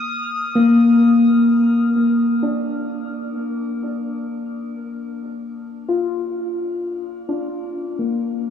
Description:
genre	ambient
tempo	free time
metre	none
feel	none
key	unclear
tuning	A4 = 440 Hz
part	muted felt-like synth keys	arpeggios	0.0-8.5 s	Bb3 to F6	-18 LUFS	left 2 dB	chorus, diffuse ambient delay, shimmer reverb
room	wet cathedral reverb, RT60 4.9 s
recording	in a vast, echoing space, studio ambience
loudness	-17 LUFS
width	side -8 dB against mid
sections	0.0-8.5 A section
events	none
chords	0.0 Bb5

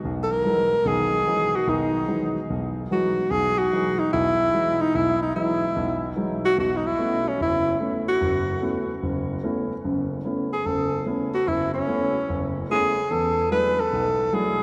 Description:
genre	jazz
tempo	147 BPM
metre	4/4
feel	swing 66% on 8ths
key	E lydian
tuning	A4 = 444 Hz
part	warm grand piano	accompaniment	0.0-14.6 s	F#1 to E4	-29 LUFS	equal	none
part	breathy tenor saxophone	melody	0.2-14.6 s	C#4 to B4	-25 LUFS	equal	none
room	wet cathedral reverb, RT60 4.4 s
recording	recorded in a church or concert hall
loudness	-24 LUFS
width	mono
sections	0.0-6.6 A section; 6.6-14.6 B section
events	none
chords	0.0 Emaj9; 6.6 B9sus4; 13.1 E9sus4

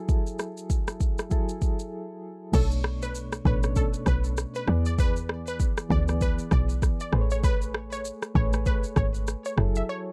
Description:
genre	afrobeats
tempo	98 BPM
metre	4/4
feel	swing 58% on 16ths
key	B dorian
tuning	A4 = 441 Hz
part	soft electric-piano-like synth keys	accompaniment	0.0-10.1 s	B2 to D5	-36 LUFS	equal	chorus, tremolo
part	afro-pop drum kit	drums	0.1-9.9 s	crash cymbal, kick drum, rim click, shaker	-28 LUFS	equal	none
part	analog pluck	melody	2.5-10.0 s	A4 to E5	-37 LUFS	equal	chorus
part	woody log drum bass	bass	2.5-9.8 s	F#1 to E2	-29 LUFS	equal	none
room	little or no reverb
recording	dark, warm production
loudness	-26 LUFS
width	mono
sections	0.0-2.5 A section; 2.5-10.1 B section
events	break 1.9-2.5, 9.9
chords	0.0 F#m9; 2.5 Bm9; 4.7 E7; 7.1 Amaj9; 9.6 F#m9

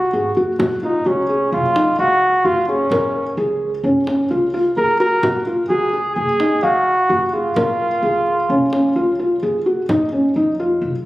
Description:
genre	contemporary instrumental, chamber music in an uneven meter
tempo	129 BPM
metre	5/4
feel	straight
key	Gb major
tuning	A4 = 439 Hz
part	warm flugelhorn	melody	0.0-9.2 s	Db4 to Bb4	-18 LUFS	equal	none
part	felt-muted upright piano	arpeggios	0.0-10.9 s	Db4 to F5	-18 LUFS	equal	none
part	upright bass	bass	0.1-11.1 s	Gb1 to F2	-28 LUFS	equal	none
part	frame drum	percussion	0.6-10.1 s	none	-27 LUFS	equal	none
room	moderate concert hall reverb, RT60 1.7 s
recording	recorded on a phone in the room, studio ambience, compression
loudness	-15 LUFS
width	side -17 dB against mid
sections	0.6-11.1 A section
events	none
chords	0.0 Gbsus2; 0.6 Gbmaj7sus2

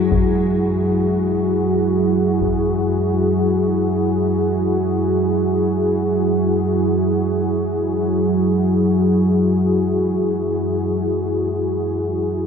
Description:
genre	dark ambient drone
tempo	free time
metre	none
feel	none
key	unclear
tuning	A4 = 441 Hz
part	dark analog pad	sustained chords	0.0-12.5 s	E4 to G#4	-20 LUFS	left 1 dB	chorus
part	deep rumbling drone	drone	0.0-12.5 s	F#2 to F#3	-19 LUFS	right 1 dB	built-in reverb
part	taiko ensemble	percussion	0.1-2.6 s	none	-26 LUFS	left 1 dB	low-pass filter on perc
room	wet huge ambient reverb, RT60 7.5 s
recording	dreamy mix soaked in reverb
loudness	-16 LUFS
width	side -7 dB against mid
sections	0.0-12.5 A section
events	none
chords	0.0 F#sus2

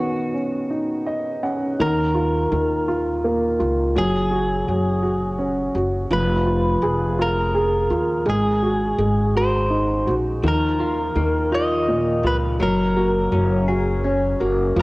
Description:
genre	six-eight pop ballad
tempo	56 BPM (dotted quarters)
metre	6/8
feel	straight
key	Eb minor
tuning	A4 = 439 Hz
part	direct-recorded clean electric guitar	melody	0.0-14.0 s	F#4 to Eb5	-24 LUFS	equal	none
part	dark upright piano	accompaniment	0.0-14.8 s	Bb2 to F#5	-21 LUFS	equal	cassette tape
part	upright bass	bass	1.8-14.8 s	F1 to Eb2	-24 LUFS	equal	none
part	direct-recorded clean electric guitar	arpeggios	10.4-14.8 s	F3 to Ab4	-26 LUFS	left 3 dB	phaser, cassette tape
room	moderate spring reverb, RT60 2.8 s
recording	home recording on cassette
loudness	-18 LUFS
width	side -22 dB against mid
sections	0.0-1.8 A section; 1.8-14.8 B section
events	upright piano fill 0.7-1.8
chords	0.0 Badd9/D#; 1.8 Ebsus2; 4.0 Gbsus2; 6.1 Fm7b5; 8.3 Ab7; 10.4 Ebsus2; 12.6 Gbadd9

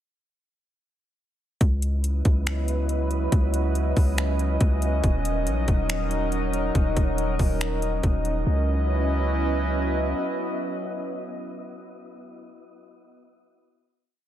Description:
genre	hip hop, atmospheric cloud-rap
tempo	140 BPM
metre	4/4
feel	half-time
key	C# dorian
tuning	A4 = 440 Hz
part	warbly tape-like pad	sustained chords	2.0-12.2 s	F#3 to D#5	-28 LUFS	right 1 dB	chorus, built-in reverb, sidechain pumping
part	warm 808-style bass	bass	1.6-10.1 s	D#1 to C#2	-25 LUFS	equal	none
part	trap drum kit	drums	1.6-8.3 s	finger snaps, hi-hat, kick drum	-24 LUFS	equal	none
part	wind-like tuned noise texture	texture	2.1-12.2 s	B3 to D#5	-38 LUFS	equal	built-in reverb
room	little or no reverb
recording	none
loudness	-22 LUFS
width	side -11 dB against mid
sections	1.6-8.5 verse; 8.5-11.9 final chord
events	none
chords	1.6 C#m11; 5.0 D#m7; 8.5 C#m11

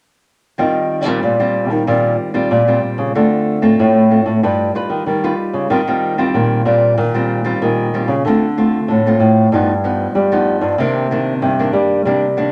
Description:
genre	samba and choro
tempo	94 BPM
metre	4/4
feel	straight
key	Eb major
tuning	A4 = 442 Hz
part	nylon-string guitar	accompaniment	0.6-12.5 s	G2 to B4	-18 LUFS	equal	none
part	nylon-string guitar	bass	0.6-12.5 s	G2 to G3	-19 LUFS	equal	none
room	wet large studio reverb, RT60 0.8 s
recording	none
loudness	-15 LUFS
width	mono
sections	0.6-5.7 A section; 5.7-12.5 B section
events	none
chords	0.6 Eb69; 3.1 Dm7; 4.4 Gaug7; 5.7 Eb69; 8.2 Dm7; 9.5 Gaug7; 10.8 Cm9

